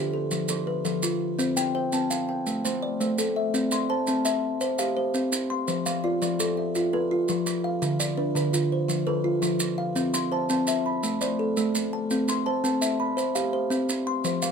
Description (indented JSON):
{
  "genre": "southern african traditional, mbira-style interlocking cycle",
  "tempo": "112 BPM (dotted quarters)",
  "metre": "12/8",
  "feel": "straight",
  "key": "C major",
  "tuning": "A4 = 440 Hz",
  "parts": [
    { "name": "kalimba", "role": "arpeggios", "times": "0.0-14.5 s", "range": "D3 to C6", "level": "-25 LUFS", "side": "left 1 dB", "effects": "none" },
    { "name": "kalimba", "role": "arpeggios", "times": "0.0-14.5 s", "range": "D3 to B5", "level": "-30 LUFS", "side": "right 4 dB", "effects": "none" },
    { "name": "maracas", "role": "percussion", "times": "0.3-14.5 s", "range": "none", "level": "-31 LUFS", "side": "right 4 dB", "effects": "none" }
  ],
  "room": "little or no reverb",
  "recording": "close, detailed microphones",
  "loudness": "-23 LUFS",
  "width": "side -6 dB against mid",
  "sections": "0.0-3.5 A section; 3.5-14.5 B section",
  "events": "none",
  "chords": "0.3 F; 1.4 C5; 2.5 Am; 3.5 C; 5.7 F; 7.8 Dm; 8.9 F; 10.0 C; 11.0 Am; 12.1 C"
}